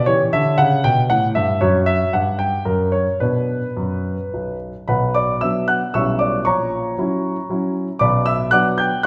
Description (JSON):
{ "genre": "classical-period piano sonatina", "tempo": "115 BPM", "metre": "3/4", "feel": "rubato", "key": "B minor", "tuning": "A4 = 440 Hz", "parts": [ { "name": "warm grand piano", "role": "solo", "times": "0.0-9.1 s", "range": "A#1 to G6", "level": "-19 LUFS", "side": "equal", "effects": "none" } ], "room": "wet recital hall reverb, RT60 1.7 s", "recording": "recorded in a church or concert hall", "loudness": "-19 LUFS", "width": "mono", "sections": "0.0-4.9 A section; 4.9-9.1 B section", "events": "none", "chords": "0.1 C#dim; 1.6 N.C.; 3.2 Bm; 5.9 C#m7b5/B; 6.4 F#7/A#; 8.0 Bm", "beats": "| 0.07 0.58 1.09 | 1.61 2.13 2.66 | 3.21 3.77 4.32 | 4.88 5.41 5.93 | 6.45 6.96 7.48 | 8.01 8.53 9.04" }